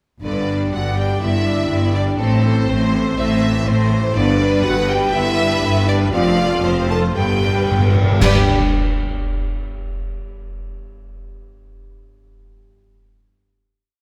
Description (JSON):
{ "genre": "cinematic, heroic adventure film score", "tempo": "112-124 BPM", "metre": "4/4", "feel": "straight", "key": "G major", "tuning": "A4 = 441 Hz", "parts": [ { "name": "clear symphonic violin section", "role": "melody", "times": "0.2-8.5 s", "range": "C5 to A5", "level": "-27 LUFS", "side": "equal", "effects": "none" }, { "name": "rich studio violin section", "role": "second line", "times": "0.2-8.5 s", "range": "A4 to E5", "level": "-27 LUFS", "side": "equal", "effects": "none" }, { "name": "clear symphonic viola section", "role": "accompaniment", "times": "0.2-8.5 s", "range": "D3 to G4", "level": "-29 LUFS", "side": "equal", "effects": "none" }, { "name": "dark French horn section", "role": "sustained chords", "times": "0.2-8.4 s", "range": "C4 to A4", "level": "-25 LUFS", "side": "equal", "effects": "none" }, { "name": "concert harp", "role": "arpeggios", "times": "0.2-10.3 s", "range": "F2 to G5", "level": "-28 LUFS", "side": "equal", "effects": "none" }, { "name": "clear symphonic cello section", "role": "bass", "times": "0.2-8.5 s", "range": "F2 to A2", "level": "-24 LUFS", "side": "equal", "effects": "none" }, { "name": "rich symphonic double bass section", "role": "bass", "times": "0.2-8.5 s", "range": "F1 to A1", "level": "-24 LUFS", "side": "equal", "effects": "none" }, { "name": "cymbal swell, clash cymbals and concert bass drum", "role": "percussion", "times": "4.2-9.2 s", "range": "none", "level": "-26 LUFS", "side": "equal", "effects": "none" }, { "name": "timpani", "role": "percussion", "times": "7.2-8.5 s", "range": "G2", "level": "-24 LUFS", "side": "equal", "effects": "none" } ], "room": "moderate scoring stage reverb, RT60 1.9 s", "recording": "none", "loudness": "-17 LUFS", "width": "mono", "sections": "0.2-8.2 theme; 8.2-10.3 final chord", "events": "slowing down 3.2-8.2; timpani fill 7.1-8.2; band accent 8.2-8.7", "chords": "0.2 G; 2.2 Am; 4.2 G; 6.1 F; 7.1 G", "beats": "| 0.24 0.73 1.22 1.71 | 2.20 2.69 3.18 3.67 | 4.15 4.64 5.13 5.62 | 6.12 6.63 7.15 7.68 | 8.21 8.74 9.26 9.78" }